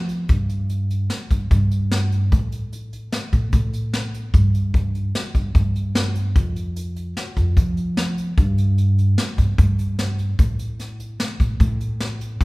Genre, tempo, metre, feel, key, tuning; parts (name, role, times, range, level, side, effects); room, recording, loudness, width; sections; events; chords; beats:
progressive instrumental, band music in an uneven meter; 149 BPM; 5/4; straight; A4 = 441 Hz
upright bass; bass; 0.0-12.4 s; F2 to F3; -20 LUFS; equal
jazz brush drum kit; drums; 0.1-12.4 s; hi-hat, kick drum, snare drum; -21 LUFS; left 1 dB
moderate recital hall reverb, RT60 1.4 s; recorded in a church or concert hall; -18 LUFS; side -23 dB against mid
0.0-12.4 A section
| 0.30 0.70 1.11 1.51 1.92 | 2.32 2.73 3.13 3.53 3.94 | 4.34 4.75 5.15 5.55 5.96 | 6.36 6.76 7.17 7.57 7.97 | 8.38 8.78 9.18 9.59 9.99 | 10.39 10.80 11.20 11.60 12.01 | 12.41